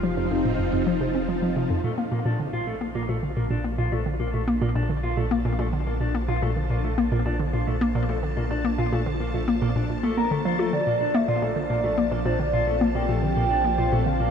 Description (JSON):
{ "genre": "ambient, sequencer-driven space music", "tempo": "108 BPM", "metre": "4/4", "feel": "straight", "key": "Bb major", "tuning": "A4 = 441 Hz", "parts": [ { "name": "phased string machine", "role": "sustained chords", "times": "0.0-14.3 s", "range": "F3 to A5", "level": "-31 LUFS", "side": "equal", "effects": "ensemble chorus, phaser, shimmer reverb" }, { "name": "hollow square pluck", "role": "riff", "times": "0.0-14.3 s", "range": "F2 to F4", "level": "-25 LUFS", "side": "equal", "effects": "chorus, shimmer reverb, ping-pong delay" }, { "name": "round analog bass", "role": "bass", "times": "0.0-14.3 s", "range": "F1 to Bb1", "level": "-30 LUFS", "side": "equal", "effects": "tube saturation" }, { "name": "bubbling stepped-filter texture", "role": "texture", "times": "0.0-1.9 s", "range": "F4 to F5", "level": "-38 LUFS", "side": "right 2 dB", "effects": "chorus, built-in reverb, shimmer reverb" }, { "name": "mellow electric guitar", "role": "arpeggios", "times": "1.8-14.3 s", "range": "A3 to Bb4", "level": "-31 LUFS", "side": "moving between left 5 dB and right 1 dB", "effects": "auto-pan, shimmer reverb, ping-pong delay" }, { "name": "soft octave-layered synth lead", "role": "melody", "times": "10.7-14.3 s", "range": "C5 to G5", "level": "-25 LUFS", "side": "right 1 dB", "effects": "chorus, phaser, shimmer reverb, ping-pong delay" } ], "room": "moderate huge ambient reverb, RT60 7.4 s", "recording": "cassette tape", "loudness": "-22 LUFS", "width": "side -7 dB against mid", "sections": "0.0-1.8 A section; 1.8-14.3 B section", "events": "fade-in on string machine 1.8-14.3", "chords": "0.0 F7; 1.8 Bbmaj7", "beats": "0.17 0.73 1.28 | 1.84 2.40 2.95 3.51 | 4.06 4.62 5.17 5.73 | 6.28 6.84 7.39 7.95 | 8.51 9.06 9.62 10.17 | 10.73 11.28 11.84 12.39 | 12.95 13.51 14.06" }